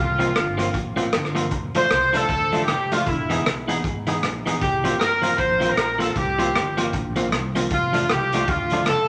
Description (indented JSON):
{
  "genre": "ska",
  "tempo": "155 BPM",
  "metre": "4/4",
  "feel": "swing 60% on 8ths",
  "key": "C mixolydian",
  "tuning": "A4 = 440 Hz",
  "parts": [
    { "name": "clear horn section", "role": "melody", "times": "0.0-9.1 s", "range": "E4 to C5", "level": "-24 LUFS", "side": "equal", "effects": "none" },
    { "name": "upright bass", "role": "bass", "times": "0.0-9.1 s", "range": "E1 to D2", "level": "-32 LUFS", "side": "equal", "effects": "none" },
    { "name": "clean electric guitar", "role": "accompaniment", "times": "0.2-8.8 s", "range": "E3 to G#4", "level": "-28 LUFS", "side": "equal", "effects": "warbly pitch drift" },
    { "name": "raw garage drum kit", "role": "drums", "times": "0.2-9.0 s", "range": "hi-hat, kick drum, rim click", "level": "-28 LUFS", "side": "equal", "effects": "none" }
  ],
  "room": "wet large studio reverb, RT60 1.3 s",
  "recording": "none",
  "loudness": "-22 LUFS",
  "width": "mono",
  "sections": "0.0-9.1 A section",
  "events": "none",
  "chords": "0.0 C7sus4; 1.5 F6; 3.1 Emaj7; 4.6 C7sus4; 7.7 F6"
}